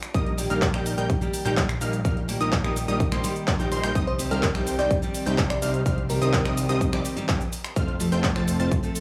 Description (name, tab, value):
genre	EDM, festival progressive house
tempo	126 BPM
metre	4/4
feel	straight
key	unclear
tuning	A4 = 440 Hz
part	big-room dance drum kit	drums	0.0-9.0 s	finger snaps, handclaps, hi-hat, shaker	-34 LUFS	equal	none
part	unison pluck	arpeggios	0.1-8.7 s	C6 to A6	-37 LUFS	equal	sidechain pumping, dub echo
part	supersaw stab	riff	0.1-8.7 s	G3 to A5	-33 LUFS	equal	sidechain pumping, dub echo
part	fat analog bass	bass	0.1-8.7 s	F1 to C2	-32 LUFS	equal	sidechain pumping
part	electronic kick drum	drums	0.1-8.8 s	none	-28 LUFS	equal	overdrive
part	picked steel-string acoustic guitar	accompaniment	0.4-9.0 s	Eb3 to A4	-32 LUFS	equal	sidechain pumping, dub echo
part	bell-like FM electric piano	melody	4.1-6.5 s	Bb4 to D5	-33 LUFS	equal	chorus, dub echo
room	light reverb, digital ambience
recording	small room ambience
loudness	-24 LUFS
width	mono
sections	0.0-9.0 A section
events	none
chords	0.1 Eb/Bb; 4.0 Cm; 7.8 F